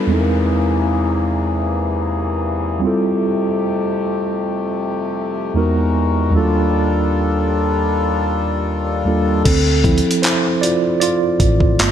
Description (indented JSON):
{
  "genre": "contemporary R&B",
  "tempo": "77 BPM",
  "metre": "4/4",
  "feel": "straight",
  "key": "unclear",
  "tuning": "A4 = 440 Hz",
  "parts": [
    { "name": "mellow tine electric piano", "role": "accompaniment", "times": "0.0-11.9 s", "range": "Eb2 to D5", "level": "-17 LUFS", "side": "right 1 dB", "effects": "medium stereo tremolo, low-pass filter" },
    { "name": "hand-pumped harmonium", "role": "sustained chords", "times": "0.0-9.4 s", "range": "Eb2 to A#4", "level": "-22 LUFS", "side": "left 4 dB", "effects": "low-pass filter" },
    { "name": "downlifter", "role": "sound effects", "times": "0.0-3.2 s", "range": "none", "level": "-36 LUFS", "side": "left 2 dB", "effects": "none" },
    { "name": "vintage muted fingered electric bass", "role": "bass", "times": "9.5-11.9 s", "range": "G1 to D2", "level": "-17 LUFS", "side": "equal", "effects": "none" },
    { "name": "dusty soul sampler-style drum kit", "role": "drums", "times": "9.5-11.9 s", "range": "crash cymbal, handclaps, hi-hat, kick drum", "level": "-17 LUFS", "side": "equal", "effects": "none" }
  ],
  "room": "moderate plate reverb, RT60 3.0 s",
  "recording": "bright 1980s-style digital production",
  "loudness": "-15 LUFS",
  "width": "side -9 dB against mid",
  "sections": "0.0-9.5 A section; 9.5-11.9 B section",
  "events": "filter sweep 0.0-9.5; tine electric piano solo 9.5-11.9",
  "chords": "0.1 C7alt/E; 2.8 Fmaj9; 5.6 Emaj9#11; 6.3 Ebmaj9#11; 9.5 Dm9"
}